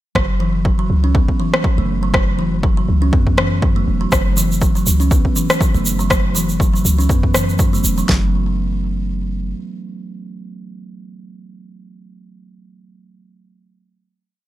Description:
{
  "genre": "afro house",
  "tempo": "121 BPM",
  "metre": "4/4",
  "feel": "swing 56% on 16ths",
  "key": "F# minor",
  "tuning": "A4 = 442 Hz",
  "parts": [
    { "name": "kalimba", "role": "arpeggios", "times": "0.2-8.3 s", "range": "E3 to C#4", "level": "-21 LUFS", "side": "right 2 dB", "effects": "sidechain pumping, ping-pong delay" },
    { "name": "warm 808-style bass", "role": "bass", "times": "0.2-9.5 s", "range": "E1 to F#2", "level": "-19 LUFS", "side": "equal", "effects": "sidechain pumping" },
    { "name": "deep house drum kit", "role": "drums", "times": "0.2-8.2 s", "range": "kick drum, snare drum", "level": "-17 LUFS", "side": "equal", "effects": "overdrive, studio ambience" },
    { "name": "electronic rim click", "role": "drums", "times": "0.2-7.5 s", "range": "none", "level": "-20 LUFS", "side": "left 1 dB", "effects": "overdrive, studio ambience" },
    { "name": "tube shaker", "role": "percussion", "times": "4.1-8.1 s", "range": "none", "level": "-23 LUFS", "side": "right 3 dB", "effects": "none" }
  ],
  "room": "small room ambience",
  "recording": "none",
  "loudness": "-14 LUFS",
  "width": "side -14 dB against mid",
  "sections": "0.2-8.1 groove; 8.1-12.1 final note",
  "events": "none",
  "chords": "0.2 F#7(no3); 8.1 N.C.",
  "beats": "| 0.16 0.65 1.15 1.65 | 2.14 2.64 3.13 3.63 | 4.12 4.62 5.12 5.61 | 6.11 6.60 7.10 7.59 | 8.09 8.59 9.08"
}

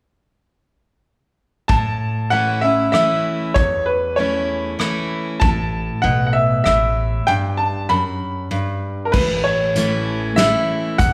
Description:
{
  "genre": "honky-tonk and classic country",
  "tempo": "97 BPM",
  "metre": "3/4",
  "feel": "straight",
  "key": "A mixolydian",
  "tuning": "A4 = 440 Hz",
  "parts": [
    { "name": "bright upright piano", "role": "melody", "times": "1.7-11.1 s", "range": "Bb4 to B5", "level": "-21 LUFS", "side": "equal", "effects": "none" },
    { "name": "picked steel-string acoustic guitar", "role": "accompaniment", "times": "1.7-11.1 s", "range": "E2 to E4", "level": "-24 LUFS", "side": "equal", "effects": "none" },
    { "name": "unplugged drum kit", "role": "drums", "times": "1.7-11.1 s", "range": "crash cymbal, hi-hat, kick drum, rim click, snare drum", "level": "-23 LUFS", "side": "equal", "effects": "none" },
    { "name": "upright bass", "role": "bass", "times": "5.4-11.1 s", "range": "E1 to B1", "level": "-26 LUFS", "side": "equal", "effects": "none" }
  ],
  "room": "wet recital hall reverb, RT60 1.6 s",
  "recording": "heard from further back in the room",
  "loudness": "-19 LUFS",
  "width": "mono",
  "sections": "1.7-9.1 A section; 9.1-11.1 B section",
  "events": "break 7.3-9.1",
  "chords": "1.7 A; 7.3 G; 9.1 A",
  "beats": "| 1.69 2.31 2.93 | 3.56 4.17 4.79 | 5.42 6.04 6.66 | 7.28 7.89 8.51 | 9.13 9.75 10.37 | 10.99"
}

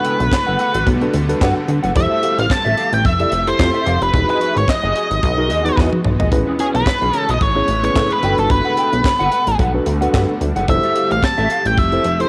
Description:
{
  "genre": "early-eighties boogie funk",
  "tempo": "110 BPM",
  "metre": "4/4",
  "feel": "swing 56% on 16ths",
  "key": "unclear",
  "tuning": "A4 = 441 Hz",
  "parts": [
    { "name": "octave-fuzz lead guitar", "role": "melody", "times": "0.0-12.3 s", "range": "G#4 to A5", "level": "-21 LUFS", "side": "equal", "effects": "distortion" },
    { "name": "mellow tine electric piano", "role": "accompaniment", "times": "0.0-12.3 s", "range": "C#4 to D5", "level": "-24 LUFS", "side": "equal", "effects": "cassette tape" },
    { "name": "granular cloud pad", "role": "sustained chords", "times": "0.0-12.3 s", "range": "C#3 to G4", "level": "-29 LUFS", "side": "equal", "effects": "built-in reverb, cassette tape" },
    { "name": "clean electric guitar", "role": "riff", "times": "0.0-12.2 s", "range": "C#4 to G5", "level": "-26 LUFS", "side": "equal", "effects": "ensemble chorus, cassette tape" },
    { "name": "tight funk drum kit", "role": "drums", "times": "0.0-12.3 s", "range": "handclaps, hi-hat, kick drum, snare drum, toms", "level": "-22 LUFS", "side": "equal", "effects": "none" },
    { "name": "plucky analog bass", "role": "bass", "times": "0.2-12.3 s", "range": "E1 to A2", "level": "-21 LUFS", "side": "equal", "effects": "none" }
  ],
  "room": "light reverb, studio reverb",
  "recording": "home recording on cassette",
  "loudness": "-16 LUFS",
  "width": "mono",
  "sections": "0.0-12.3 A section",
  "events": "drum fill 5.8-6.3",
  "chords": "0.0 Gmaj9; 2.0 Fmaj9; 4.1 Emaj9; 6.3 Amaj9; 8.2 Gmaj9; 10.7 Fmaj9",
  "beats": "0.32 0.86 1.41 | 1.96 2.50 3.05 3.59 | 4.14 4.68 5.23 5.77 | 6.32 6.86 7.41 7.96 | 8.50 9.05 9.59 10.14 | 10.68 11.23 11.77"
}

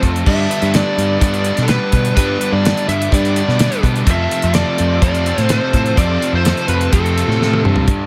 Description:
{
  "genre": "classic rock",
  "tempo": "126 BPM",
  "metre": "4/4",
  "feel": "straight",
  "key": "unclear",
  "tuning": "A4 = 440 Hz",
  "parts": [
    { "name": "bright tonewheel organ", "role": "sustained chords", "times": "0.0-7.8 s", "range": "A3 to D5", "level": "-34 LUFS", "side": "equal", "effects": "none" },
    { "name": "crunchy overdriven guitar", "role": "riff", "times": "0.0-7.9 s", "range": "F2 to D4", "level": "-26 LUFS", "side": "equal", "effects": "none" },
    { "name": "distorted electric guitar", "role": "riff", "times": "0.0-8.1 s", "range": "G2 to B4", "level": "-27 LUFS", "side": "equal", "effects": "distortion" },
    { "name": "overdriven electric guitar", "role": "riff", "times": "0.0-8.1 s", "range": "F2 to G3", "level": "-26 LUFS", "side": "equal", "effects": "spring reverb" },
    { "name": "growling picked electric bass", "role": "bass", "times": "0.0-8.1 s", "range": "F2 to B2", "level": "-20 LUFS", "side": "equal", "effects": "overdrive" },
    { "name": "damped 70s drum kit", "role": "drums", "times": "0.0-8.0 s", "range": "crash cymbal, hi-hat, kick drum, snare drum, toms", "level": "-20 LUFS", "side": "equal", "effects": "none" },
    { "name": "fuzz lead guitar", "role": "melody", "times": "0.3-7.6 s", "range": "A4 to E5", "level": "-22 LUFS", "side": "equal", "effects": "distortion" }
  ],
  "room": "light reverb, small room ambience",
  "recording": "none",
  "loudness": "-15 LUFS",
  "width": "mono",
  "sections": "0.0-7.9 A section",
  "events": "drum fill 7.4-7.9",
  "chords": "0.3 G; 4.1 F",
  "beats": "| 0.27 0.74 1.22 1.69 | 2.17 2.64 3.12 3.60 | 4.07 4.55 5.02 5.50 | 5.97 6.45 6.92 7.40 | 7.88"
}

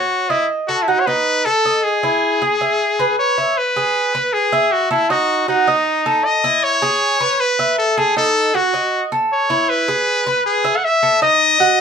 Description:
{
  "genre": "latin",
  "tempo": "157 BPM",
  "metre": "4/4",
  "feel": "straight",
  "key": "E major",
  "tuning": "A4 = 440 Hz",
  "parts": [
    { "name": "brilliant trumpet", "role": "melody", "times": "0.0-11.8 s", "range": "D#4 to F#5", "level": "-16 LUFS", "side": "left 2 dB", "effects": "none" },
    { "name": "Cuban tres", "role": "arpeggios", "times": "0.0-11.8 s", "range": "D#4 to E5", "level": "-19 LUFS", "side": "right 3 dB", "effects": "none" }
  ],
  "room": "moderate studio reverb, RT60 0.5 s",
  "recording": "band playing live in one room",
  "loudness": "-14 LUFS",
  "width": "side -7 dB against mid",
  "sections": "0.0-3.6 A section; 3.6-11.8 B section",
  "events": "none",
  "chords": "0.5 B7; 2.0 E; 5.1 D#dim; 6.6 E; 8.2 D#m7b5; 9.7 E; 11.2 D#m",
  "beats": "0.11 | 0.49 0.88 1.26 1.65 | 2.03 2.41 2.80 3.18 | 3.56 3.95 4.33 4.71 | 5.10 5.48 5.86 6.25 | 6.63 7.01 7.39 7.78 | 8.16 8.54 8.92 9.30 | 9.69 10.07 10.45 10.83 | 11.21 11.60"
}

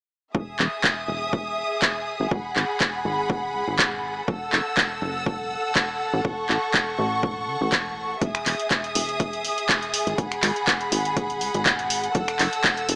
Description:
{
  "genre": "piano house",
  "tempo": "122 BPM",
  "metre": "4/4",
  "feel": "swing 54% on 16ths",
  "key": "E major",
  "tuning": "A4 = 440 Hz",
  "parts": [
    { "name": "rich symphonic violin section", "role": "sustained chords", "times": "0.3-13.0 s", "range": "G#4 to E6", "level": "-29 LUFS", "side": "equal", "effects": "sidechain pumping" },
    { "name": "plucky analog bass", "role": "bass", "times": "0.3-13.0 s", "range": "E1 to C#2", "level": "-32 LUFS", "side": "equal", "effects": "tube saturation, sidechain pumping" },
    { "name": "electronic kick drum", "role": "drums", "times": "0.3-12.7 s", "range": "none", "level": "-30 LUFS", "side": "equal", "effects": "none" },
    { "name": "punchy analog drum machine", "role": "drums", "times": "0.6-13.0 s", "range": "finger snaps, handclaps, hi-hat", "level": "-25 LUFS", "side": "equal", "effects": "none" }
  ],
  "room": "light reverb",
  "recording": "small speaker sound",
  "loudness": "-24 LUFS",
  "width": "mono",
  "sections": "0.3-13.0 A section",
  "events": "none",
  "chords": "0.3 Emaj7; 2.3 G#m7; 4.3 F#m7; 6.2 A6; 8.2 Emaj7; 10.2 G#m7; 12.2 F#m7",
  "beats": "| 0.35 0.84 1.33 1.82 | 2.31 2.81 3.30 3.79 | 4.28 4.77 5.26 5.76 | 6.25 6.74 7.23 7.72 | 8.22 8.71 9.20 9.69 | 10.18 10.68 11.17 11.66 | 12.15 12.64"
}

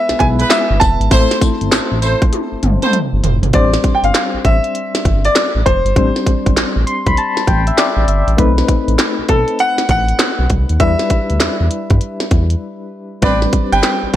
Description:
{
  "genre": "R&B, new jack swing",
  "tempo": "99 BPM",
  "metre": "4/4",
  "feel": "swing 64% on 16ths",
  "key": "A minor",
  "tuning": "A4 = 441 Hz",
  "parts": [
    { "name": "clear concert grand piano", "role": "melody", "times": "0.0-14.2 s", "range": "A4 to A5", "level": "-18 LUFS", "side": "equal", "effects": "digital delay" },
    { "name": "soft electric-piano-like synth keys", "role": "accompaniment", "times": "0.0-14.2 s", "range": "G3 to C6", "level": "-20 LUFS", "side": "left 3 dB", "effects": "chorus, tremolo" },
    { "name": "smooth synth bass", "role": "bass", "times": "0.1-14.2 s", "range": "F1 to G2", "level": "-16 LUFS", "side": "equal", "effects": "none" },
    { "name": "glitchy drum kit", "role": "drums", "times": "0.1-14.2 s", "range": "handclaps, hi-hat, kick drum, snare drum, tambourine, toms", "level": "-15 LUFS", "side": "equal", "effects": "gated reverb" },
    { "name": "warm horn section", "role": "stabs", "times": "0.4-3.0, 13.2-14.2 s", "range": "C4 to C5", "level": "-20 LUFS", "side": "right 2 dB", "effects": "digital delay" }
  ],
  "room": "little or no reverb",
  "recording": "none",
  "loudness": "-12 LUFS",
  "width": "side -12 dB against mid",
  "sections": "0.0-3.5 A section; 3.5-14.2 B section",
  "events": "drum fill 2.3-3.5; synth keys fill 6.6-8.4; break 12.6-13.2",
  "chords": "0.0 E; 1.1 Am; 3.5 Am7; 8.4 B7b9; 10.8 Em7; 13.2 Am11",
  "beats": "0.50 | 1.11 1.72 2.32 2.93 | 3.53 4.14 4.75 5.35 | 5.96 6.56 7.17 7.78 | 8.38 8.99 9.59 10.20 | 10.81 11.41 12.02 12.62 | 13.23 13.84"
}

